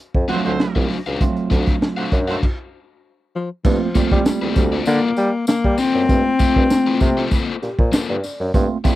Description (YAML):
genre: funk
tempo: 98 BPM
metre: 4/4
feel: straight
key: unclear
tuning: A4 = 440 Hz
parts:
  - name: mellow bassoon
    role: bass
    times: 0.1-8.9 s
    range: C2 to G3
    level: -22 LUFS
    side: equal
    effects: none
  - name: crunchy breakbeat drum kit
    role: drums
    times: 0.1-9.0 s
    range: crash cymbal, hi-hat, kick drum, snare drum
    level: -18 LUFS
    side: equal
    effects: none
  - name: clear horn section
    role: second line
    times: 0.3-2.4 s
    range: A3 to C5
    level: -26 LUFS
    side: right 4 dB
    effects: none
  - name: crunchy overdriven guitar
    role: accompaniment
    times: 0.3-9.0 s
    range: Bb3 to E#5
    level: -26 LUFS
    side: left 5 dB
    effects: spring reverb
  - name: tine electric piano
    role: stabs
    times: 0.3-9.0 s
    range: E#3 to D5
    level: -23 LUFS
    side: right 5 dB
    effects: phaser
  - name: breathy alto saxophone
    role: melody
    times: 3.4-7.6 s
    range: F3 to C4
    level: -19 LUFS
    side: left 4 dB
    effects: none
  - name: tambourine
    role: percussion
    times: 3.7-9.0 s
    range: none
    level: -38 LUFS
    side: left 3 dB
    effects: none
room: little or no reverb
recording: dry, close 1970s-style studio recording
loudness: -16 LUFS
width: side -15 dB against mid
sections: 0.0-3.6 A section; 3.6-9.0 B section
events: stop 2.4-3.6; tine electric piano fill 7.3-8.5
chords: 0.0 D7#9; 3.6 Gm11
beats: 0.59 | 1.21 1.82 2.43 3.04 | 3.65 4.26 4.87 5.48 | 6.09 6.70 7.32 7.93 | 8.54